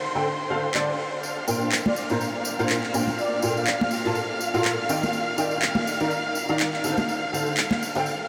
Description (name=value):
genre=piano house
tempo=123 BPM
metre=4/4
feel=swing 57% on 16ths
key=unclear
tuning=A4 = 441 Hz
part: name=dark symphonic violin section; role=sustained chords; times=0.0-8.3 s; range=C5 to F6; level=-32 LUFS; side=equal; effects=none
part: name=clear upright piano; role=riff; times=0.2-8.1 s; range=Bb2 to Bb5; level=-28 LUFS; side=equal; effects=ensemble chorus, low-pass filter, diffuse ambient delay
part: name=electronic handclaps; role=drums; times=0.7-7.8 s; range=none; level=-32 LUFS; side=equal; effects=overdrive
part: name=tambourine and congas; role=percussion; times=1.2-8.2 s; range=none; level=-33 LUFS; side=equal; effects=none
part: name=breathy flute-like synth lead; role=melody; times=1.9-3.9 s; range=D5 to F5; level=-35 LUFS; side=equal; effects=ensemble chorus, diffuse ambient delay
room=wet huge ambient reverb, RT60 7.7 s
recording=dreamy mix soaked in reverb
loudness=-25 LUFS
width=mono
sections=0.0-8.3 A section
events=none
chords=0.0 D7(no3); 1.2 Bb69; 3.2 Gm9/Bb (rootless); 4.9 Ebmaj7; 6.8 Dm7